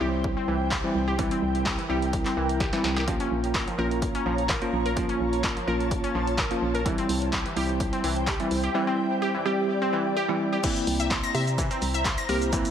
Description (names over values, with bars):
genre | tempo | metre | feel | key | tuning
dance-pop | 127 BPM | 4/4 | straight | unclear | A4 = 441 Hz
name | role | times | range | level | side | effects
bell-like tine electric piano | accompaniment | 0.0-12.7 s | G3 to G4 | -28 LUFS | right 1 dB | medium stereo tremolo, sidechain pumping
ethereal airy pad | sustained chords | 0.0-12.7 s | E4 to Bb5 | -31 LUFS | equal | ensemble chorus, built-in reverb, sidechain pumping
glassy wavetable pluck | arpeggios | 0.0-12.6 s | E3 to Bb6 | -31 LUFS | equal | chorus, sidechain pumping, digital delay
organ-like FM bass | bass | 0.0-12.6 s | Bb1 to C3 | -30 LUFS | equal | sidechain pumping
punchy analog drum machine | drums | 0.2-12.7 s | crash cymbal, handclaps, hi-hat, kick drum, shaker, snare drum | -29 LUFS | equal | none
room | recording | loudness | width
light reverb, digital ambience | none | -23 LUFS | side -9 dB against mid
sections
0.0-10.6 A section; 10.6-12.7 B section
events
drum fill 2.6-3.1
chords
0.0 C; 3.1 Bbm; 6.9 C; 10.6 C7